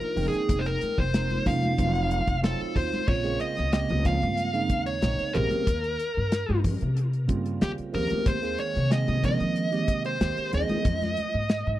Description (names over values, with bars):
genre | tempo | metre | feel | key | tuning
electric jazz fusion | 93 BPM | 4/4 | straight | Bb dorian from 3.1 s | A4 = 440 Hz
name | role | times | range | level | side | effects
dark smooth lead guitar | melody | 0.0-11.8 s | G4 to F5 | -29 LUFS | equal | overdrive
bright tine electric piano | accompaniment | 0.0-10.9 s | Db3 to G5 | -30 LUFS | right 5 dB | phaser
upright bass | bass | 0.0-11.8 s | F1 to F3 | -28 LUFS | equal | none
damped 70s drum kit | drums | 0.0-11.7 s | crash cymbal, hi-hat, kick drum, snare drum | -26 LUFS | equal | none
congas | percussion | 0.2-11.3 s | none | -34 LUFS | left 2 dB | none
room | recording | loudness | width
small room ambience | dry, close 1970s-style studio recording | -24 LUFS | side -14 dB against mid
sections
0.0-3.1 A section; 3.1-11.8 B section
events
none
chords
0.2 Abmaj9/F; 1.5 Db69/F; 1.8 F7b9; 3.1 Bbm9; 5.7 Eb13; 7.9 Abmaj7/Eb; 10.9 Fm7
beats
| 0.49 1.14 1.78 2.43 | 3.08 3.73 4.37 5.02 | 5.67 6.32 6.96 7.61 | 8.26 8.91 9.56 10.21 | 10.86 11.51